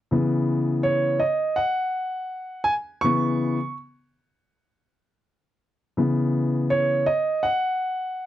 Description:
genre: hip hop.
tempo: 82 BPM.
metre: 4/4.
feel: swing 59% on 16ths.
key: C# minor.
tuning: A4 = 440 Hz.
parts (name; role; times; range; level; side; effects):
warm concert grand piano; solo; 0.1-8.3 s; C#3 to C#6; -21 LUFS; equal; none.
room: light reverb.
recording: dry, close 1970s-style studio recording.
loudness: -21 LUFS.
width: side -13 dB against mid.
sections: 0.0-6.0 A section; 6.0-8.3 A section.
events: grand piano solo 0.0-6.0, 6.0-8.3.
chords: 0.1 C#m7.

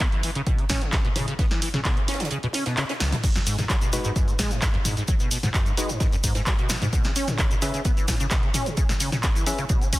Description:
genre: acid house.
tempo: 130 BPM.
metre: 4/4.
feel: straight.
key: unclear.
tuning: A4 = 440 Hz.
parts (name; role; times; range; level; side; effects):
liquid acid bass; riff; 0.0-10.0 s; C#2 to E4; -28 LUFS; equal; tube saturation, analog chorus, cassette tape, sidechain pumping, tape echo.
deep reggae drum kit; drums; 0.0-10.0 s; hi-hat, snare drum; -37 LUFS; right 3 dB; none.
electronic kick drum; drums; 0.0-10.0 s; none; -24 LUFS; equal; none.
punchy analog drum machine; drums; 0.0-10.0 s; crash cymbal, handclaps, hi-hat, snare drum, toms; -28 LUFS; equal; none.
cabasa; percussion; 3.2-10.0 s; none; -33 LUFS; left 2 dB; none.
percussive organ stab; stabs; 3.9-9.6 s; G#3 to E5; -32 LUFS; left 1 dB; wide subtle chorus, tape echo.
room: light reverb.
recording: dense, heavily limited modern master.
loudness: -21 LUFS.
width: side -18 dB against mid.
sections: 0.0-10.0 A section.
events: kick drops out 2.3-3.2.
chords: 0.0 C#7(no3); 3.2 G#m7; 6.9 C#m7.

